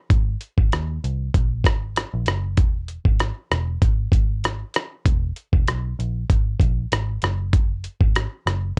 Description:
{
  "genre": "indie pop, bedroom pop",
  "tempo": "97 BPM",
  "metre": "4/4",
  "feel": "swing 55% on 16ths",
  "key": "E lydian",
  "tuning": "A4 = 441 Hz",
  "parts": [
    { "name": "vintage muted picked electric bass", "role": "bass", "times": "0.1-8.7 s", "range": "E1 to D#2", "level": "-27 LUFS", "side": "equal", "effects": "none" },
    { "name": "dusty soul sampler-style drum kit", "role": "drums", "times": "0.1-8.6 s", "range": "hi-hat, kick drum, rim click", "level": "-21 LUFS", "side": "equal", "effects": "none" }
  ],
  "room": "little or no reverb",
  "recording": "worn, warbling old tape, cassette tape, warbly pitch drift",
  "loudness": "-22 LUFS",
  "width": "mono",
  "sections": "0.0-8.8 A section",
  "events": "none",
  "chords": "none"
}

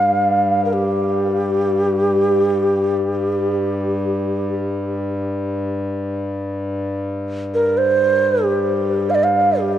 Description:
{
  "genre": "world meditative, free-time meditation music",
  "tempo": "free time",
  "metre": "none",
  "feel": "none",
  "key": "G minor pentatonic",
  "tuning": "A4 = 442 Hz",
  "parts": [
    { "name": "mellow hollow Native American-style cedar flute", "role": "melody", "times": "0.0-9.8 s", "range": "G4 to F5", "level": "-17 LUFS", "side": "right 1 dB", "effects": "ping-pong delay" },
    { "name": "pedal harmonium", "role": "drone", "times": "0.0-9.8 s", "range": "G2", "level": "-22 LUFS", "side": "left 1 dB", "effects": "none" }
  ],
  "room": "wet church reverb, RT60 2.8 s",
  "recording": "worn, warbling old tape, cassette tape, warbly pitch drift",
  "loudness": "-17 LUFS",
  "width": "side -11 dB against mid",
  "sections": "0.0-9.8 A section",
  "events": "none",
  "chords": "none"
}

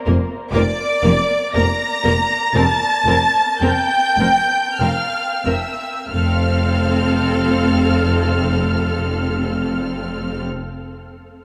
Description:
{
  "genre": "classical, slow romantic movement for string orchestra",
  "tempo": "44-68 BPM",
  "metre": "3/4",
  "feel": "rubato",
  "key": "F major",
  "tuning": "A4 = 440 Hz",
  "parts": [
    { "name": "clear symphonic viola section", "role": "accompaniment", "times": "0.1-10.5 s", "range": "Bb3 to Bb4", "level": "-25 LUFS", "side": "equal", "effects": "none" },
    { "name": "rich symphonic cello section", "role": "bass", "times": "0.1-10.5 s", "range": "F2", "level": "-26 LUFS", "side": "equal", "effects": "none" },
    { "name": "rich symphonic double bass section", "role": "bass", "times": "0.1-10.4 s", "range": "F1", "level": "-23 LUFS", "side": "equal", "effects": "none" },
    { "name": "rich symphonic violin section", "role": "melody", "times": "0.5-10.4 s", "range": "D6 to Bb6", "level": "-26 LUFS", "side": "equal", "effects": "none" },
    { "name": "rich symphonic violin section", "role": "second line", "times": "0.5-10.5 s", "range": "D5 to Bb5", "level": "-23 LUFS", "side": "equal", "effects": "none" }
  ],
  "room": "wet cathedral reverb, RT60 7.0 s",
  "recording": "in a vast, echoing space, small room ambience",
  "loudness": "-18 LUFS",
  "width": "mono",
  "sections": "0.0-6.1 A section; 6.1-9.7 B section",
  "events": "slowing down 0.0-6.1",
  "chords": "0.0 Bb/F; 2.6 C5/F; 6.1 F"
}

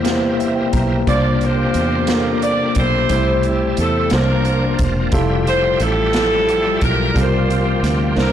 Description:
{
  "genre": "slow gospel",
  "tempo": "59 BPM (dotted quarters)",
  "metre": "6/8",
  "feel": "straight",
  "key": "unclear",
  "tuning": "A4 = 441 Hz",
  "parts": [
    { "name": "tine electric piano", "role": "accompaniment", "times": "0.0-8.3 s", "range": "C3 to Bb5", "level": "-20 LUFS", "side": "left 1 dB", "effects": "medium stereo tremolo" },
    { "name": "bright tonewheel organ", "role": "sustained chords", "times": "0.0-8.3 s", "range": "D3 to E5", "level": "-26 LUFS", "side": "right 1 dB", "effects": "slow rotary speaker, chorus vibrato" },
    { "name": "fingered electric bass", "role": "bass", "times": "0.0-8.3 s", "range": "E1 to E2", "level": "-20 LUFS", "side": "equal", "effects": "transformer saturation" },
    { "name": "swinging big-band drum kit", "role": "drums", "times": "0.0-8.3 s", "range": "hi-hat, kick drum, snare drum", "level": "-24 LUFS", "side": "equal", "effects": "none" },
    { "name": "mellow saxophone section", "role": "melody", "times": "1.1-8.3 s", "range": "C4 to D5", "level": "-19 LUFS", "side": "equal", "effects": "none" }
  ],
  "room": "moderate studio reverb, RT60 0.5 s",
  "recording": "blown-out, overdriven recording, overdrive",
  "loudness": "-14 LUFS",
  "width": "side -10 dB against mid",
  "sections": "0.0-8.3 A section",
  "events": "tine electric piano fill 0.1-1.1; drum fill 8.2",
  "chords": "0.0 C7; 1.1 C9sus4; 3.1 Am7/C; 4.1 C9sus4; 5.1 Fmaj9; 7.2 C7sus4"
}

